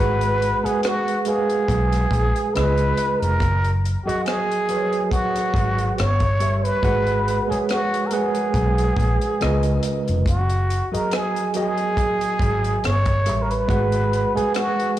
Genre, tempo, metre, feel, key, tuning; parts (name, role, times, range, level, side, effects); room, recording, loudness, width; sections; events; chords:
R&B, neo-soul; 70 BPM; 4/4; swing 53% on 16ths; G# dorian; A4 = 440 Hz
trumpet with plunger mute; melody; 0.0-15.0 s; F#4 to Db5; -23 LUFS; right 1 dB; slapback echo
tine electric piano; accompaniment; 0.0-15.0 s; C#3 to G#5; -24 LUFS; right 2 dB; fast stereo tremolo
vintage muted fingered electric bass; bass; 0.0-14.4 s; E#1 to C#2; -21 LUFS; equal; tube saturation
compact cocktail drum kit; drums; 0.2-15.0 s; hi-hat, kick drum, rim click; -27 LUFS; equal; soft clipping on snare
light reverb, small room ambience; blown-out, overdriven recording, overdrive, studio reverb; -18 LUFS; side -13 dB against mid
0.0-15.0 A section
0.0 G#m9; 2.5 C#9; 3.4 F#69; 6.0 Gdim7; 6.8 G#m9; 9.4 C#13; 10.3 F#69; 12.8 Gdim7; 13.7 G#m9